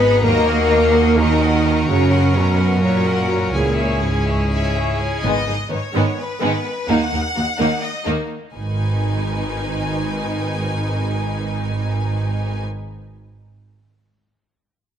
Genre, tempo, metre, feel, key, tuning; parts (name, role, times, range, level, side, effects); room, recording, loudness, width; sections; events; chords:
cinematic, epic orchestral film score; 254 BPM (eighths); 7/8; straight; G# minor; A4 = 439 Hz
rich chamber violin section; melody; 0.0-12.6 s; B4 to B5; -27 LUFS; left 3 dB
rich symphonic violin section; second line; 0.0-12.6 s; G#3 to D#5; -27 LUFS; left 2 dB
rich symphonic viola section; accompaniment; 0.0-12.6 s; D#3 to D#5; -26 LUFS; right 2 dB
dark French horn section; sustained chords; 0.0-5.0 s; G#3 to B4; -20 LUFS; left 4 dB
pipe organ, clarinet reed; sustained chords; 0.0-5.2 s; C#4 to G#5; -26 LUFS; left 2 dB
bright symphonic cello section; bass; 0.0-12.6 s; D#2 to B3; -23 LUFS; right 2 dB
clear symphonic double bass section; bass; 0.0-12.6 s; G#1 to F#2; -21 LUFS; right 2 dB
warm trombone section; sustained chords; 0.2-3.7 s; C#3 to F#3; -29 LUFS; right 4 dB
light reverb; -16 LUFS; side -9 dB against mid
0.0-5.2 A section; 5.2-8.5 B section; 8.5-11.8 C section
0.2 D#m; 1.9 F#; 3.5 C#m; 5.2 G#m; 6.9 D#m; 8.5 G#m